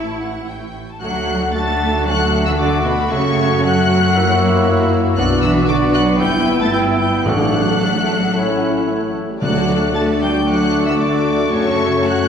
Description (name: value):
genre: quick classical-period movement for symphony orchestra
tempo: 114 BPM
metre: 4/4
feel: rubato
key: D major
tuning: A4 = 440 Hz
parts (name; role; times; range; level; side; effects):
- dark studio violin section; melody; 0.0-12.3 s; B5 to A6; -24 LUFS; left 3 dB; none
- rich chamber violin section; second line; 0.0-12.3 s; E4 to A5; -27 LUFS; left 4 dB; none
- warm chamber viola section; accompaniment; 0.0-12.3 s; A3 to F#4; -24 LUFS; equal; none
- rich studio cello section; bass; 0.0-12.3 s; A2 to A3; -22 LUFS; right 1 dB; none
- rich studio double bass section; bass; 0.0-12.3 s; G1 to F#2; -23 LUFS; equal; none
- mellow clarinet; second line; 1.0-12.3 s; E4 to F#4; -26 LUFS; right 1 dB; none
- mellow oboe; second line; 1.0-12.3 s; C#5 to F#5; -26 LUFS; equal; none
- small flute group; second line; 1.0-12.3 s; B4 to A5; -25 LUFS; left 1 dB; none
- warm bassoon; accompaniment; 1.0-12.3 s; A3 to B3; -25 LUFS; equal; none
- mellow French horn section; sustained chords; 1.0-12.3 s; G3 to F#4; -21 LUFS; left 2 dB; none
- timpani; percussion; 7.3-10.2 s; A2 to D3; -23 LUFS; equal; none
room: wet scoring stage reverb, RT60 1.5 s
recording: heard from further back in the room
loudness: -14 LUFS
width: side -7 dB against mid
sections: 0.0-1.0 A section; 1.0-12.3 B section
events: none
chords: 0.0 A; 1.0 D; 3.1 F#m; 4.2 F#7; 5.2 Bm; 6.2 Em/G; 7.3 D/A; 8.3 A; 9.4 D; 11.5 F#m